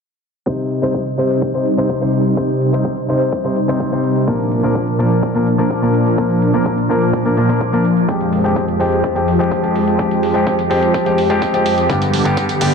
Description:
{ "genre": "EDM, festival progressive house", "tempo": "126 BPM", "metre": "4/4", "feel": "straight", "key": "C minor", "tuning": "A4 = 440 Hz", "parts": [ { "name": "warm grand piano", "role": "accompaniment", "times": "0.5-12.7 s", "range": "G2 to C5", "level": "-17 LUFS", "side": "left 2 dB", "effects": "sidechain pumping, digital delay" }, { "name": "supersaw pad", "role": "sustained chords", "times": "0.5-12.7 s", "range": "F2 to C5", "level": "-17 LUFS", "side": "right 1 dB", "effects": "phaser, sidechain pumping, low-pass filter" }, { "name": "electronic hi-hat", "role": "drums", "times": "0.5-12.7 s", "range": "none", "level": "-30 LUFS", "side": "right 4 dB", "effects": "none" }, { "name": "electronic kick drum", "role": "drums", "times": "0.5-12.5 s", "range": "none", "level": "-25 LUFS", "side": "equal", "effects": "high-pass filter on kick, high-pass filter on room" } ], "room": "moderate lush hall reverb, RT60 2.1 s", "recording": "dense, heavily limited modern master, low-pass filter", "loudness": "-14 LUFS", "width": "side -5 dB against mid", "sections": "0.5-12.7 A section", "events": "filter sweep on supersaw synth 0.5-12.7; filter sweep 0.5-12.7", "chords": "0.5 Cm; 4.3 Bb; 8.1 Fmadd9; 11.9 G" }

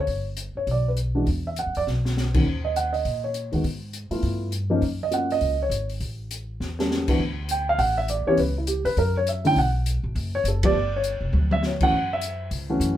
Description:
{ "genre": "jazz piano trio", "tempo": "202 BPM", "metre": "4/4", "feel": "swing 61% on 8ths", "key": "D major from 7.2 s", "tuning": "A4 = 439 Hz", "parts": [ { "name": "dark baby grand piano", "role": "melody", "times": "0.0-13.0 s", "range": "D3 to G5", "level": "-23 LUFS", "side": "right 1 dB", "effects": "none" }, { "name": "upright bass", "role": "bass", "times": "0.0-13.0 s", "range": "F1 to A#2", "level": "-27 LUFS", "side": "equal", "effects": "none" }, { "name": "open jazz drum kit", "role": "drums", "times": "0.1-12.9 s", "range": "crash cymbal, hi-hat, kick drum, ride cymbal, snare drum, toms", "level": "-29 LUFS", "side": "left 1 dB", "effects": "none" } ], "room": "light reverb", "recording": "band playing live in one room", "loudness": "-22 LUFS", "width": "side -12 dB against mid", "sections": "0.0-7.2 A section; 7.2-13.0 B section", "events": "drum fill 1.9, 6.6, 11.3; band accent 10.6", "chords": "0.1 G; 1.3 Esus2; 2.4 D#m7; 3.6 N.C.; 4.2 G13; 4.8 F#maj7; 6.0 A7b9; 7.2 D5; 8.4 C#m7b5; 9.0 F#5; 9.6 B5; 10.7 G5; 11.9 F#m7" }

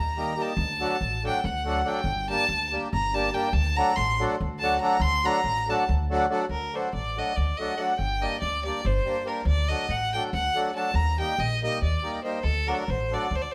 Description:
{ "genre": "balkan folk, Balkan wedding band", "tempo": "283 BPM (eighths)", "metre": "7/8", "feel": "straight", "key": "D phrygian dominant", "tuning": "A4 = 440 Hz", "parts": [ { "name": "clear fiddle", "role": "melody", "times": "0.0-13.5 s", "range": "A4 to C6", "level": "-30 LUFS", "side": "equal", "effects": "none" }, { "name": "upright bass", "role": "bass", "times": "0.0-13.4 s", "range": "G1 to Eb2", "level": "-31 LUFS", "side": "equal", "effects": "none" }, { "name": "accordion", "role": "accompaniment", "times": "0.2-13.3 s", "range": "F#3 to G4", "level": "-31 LUFS", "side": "equal", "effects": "none" } ], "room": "moderate stone room reverb, RT60 1.1 s", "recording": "band playing live in one room", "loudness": "-26 LUFS", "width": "mono", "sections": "0.0-6.5 A section; 6.5-13.5 B section", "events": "fiddle solo 0.0-6.5", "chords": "0.0 Eb; 0.6 D; 2.1 Gm; 3.5 D; 8.0 Gm; 9.5 D; 11.0 Eb; 12.4 D" }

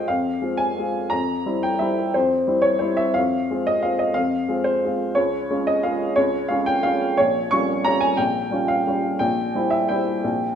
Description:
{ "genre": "classical, piano waltz", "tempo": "177 BPM", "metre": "3/4", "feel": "rubato", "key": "F minor", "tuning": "A4 = 442 Hz", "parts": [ { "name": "warm upright piano", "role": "solo", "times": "0.0-10.6 s", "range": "Bb1 to Db6", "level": "-19 LUFS", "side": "equal", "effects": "none" } ], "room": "wet recital hall reverb, RT60 1.6 s", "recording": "minimal, uncompressed stereo recording", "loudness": "-19 LUFS", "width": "side -8 dB against mid", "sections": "0.0-10.6 A section", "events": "none", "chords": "0.0 Fm; 1.1 C7/F; 3.2 Fm; 5.2 Db; 7.2 Gm7b5/Bb; 9.2 C7/Bb" }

